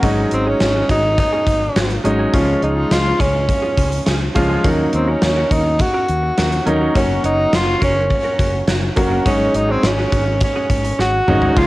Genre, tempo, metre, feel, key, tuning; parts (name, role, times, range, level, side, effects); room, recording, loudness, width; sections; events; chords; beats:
1980s-style pop; 104 BPM; 4/4; straight; A4 = 440 Hz
clear concert grand piano; accompaniment; 0.0-11.7 s; F3 to Gb4; -20 LUFS; equal; plate reverb
direct-recorded clean electric guitar; riff; 0.0-11.6 s; Db4 to Bb4; -28 LUFS; right 3 dB; analog chorus, tape echo
fretless electric bass; bass; 0.0-11.7 s; Gb1 to Eb2; -21 LUFS; equal
gated 80s drum kit; drums; 0.0-11.7 s; crash cymbal, hi-hat, kick drum, snare drum, toms; -19 LUFS; equal; cassette tape
clear tenor saxophone; melody; 0.3-11.7 s; C4 to Gb4; -19 LUFS; equal; cassette tape, plate reverb
overdriven semi-hollow guitar; accompaniment; 11.6-11.7 s; Db3 to Db4; -26 LUFS; left 1 dB
phased analog pad; sustained chords; 11.6-11.7 s; barely audible
moderate studio reverb, RT60 0.7 s; home recording on cassette; -14 LUFS; side -18 dB against mid
0.0-11.6 A section
drum fill 11.0-11.6
0.0 Ab7sus4; 2.3 Db; 4.6 Ebm7; 7.0 Gb; 9.3 Ab7sus4
| 0.03 0.60 1.18 1.76 | 2.34 2.91 3.49 4.07 | 4.64 5.22 5.80 6.37 | 6.95 7.53 8.11 8.68 | 9.26 9.84 10.41 10.99 | 11.57